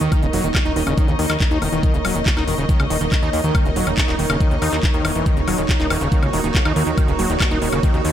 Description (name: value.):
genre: psychedelic trance.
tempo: 140 BPM.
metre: 4/4.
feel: straight.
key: Eb minor.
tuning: A4 = 440 Hz.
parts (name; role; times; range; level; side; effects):
evolving wavetable pad; sustained chords; 0.0-8.1 s; Eb4 to Eb5; -26 LUFS; right 2 dB; ensemble chorus, built-in reverb, vintage 12-bit sampler grit, sidechain pumping.
overdriven acid bass; riff; 0.0-8.1 s; Db3 to Eb4; -24 LUFS; moving between left 5 dB and right 4 dB; distortion, auto-pan, sidechain pumping, ping-pong delay.
plucky analog bass; bass; 0.0-8.1 s; Eb1 to Eb2; -23 LUFS; equal; none.
drum and bass drum kit; drums; 0.0-8.1 s; handclaps, hi-hat, woodblock; -25 LUFS; left 2 dB; small room ambience.
airy breathy pad; texture; 0.0-8.1 s; Bb3 to Db6; -27 LUFS; equal; chorus, sidechain pumping.
electronic kick drum; drums; 0.1-7.9 s; none; -18 LUFS; equal; small room ambience.
formant-sweep wobble bass; second line; 0.8-1.1, 5.9-8.0 s; Eb3 to Db4; -34 LUFS; left 1 dB; none.
room: light reverb, digital ambience.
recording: none.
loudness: -16 LUFS.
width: side -10 dB against mid.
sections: 0.0-8.1 A section.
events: none.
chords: 0.0 Eb5.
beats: | 0.12 0.55 0.97 1.40 | 1.83 2.26 2.69 3.12 | 3.55 3.98 4.40 4.83 | 5.26 5.69 6.12 6.55 | 6.97 7.40 7.83.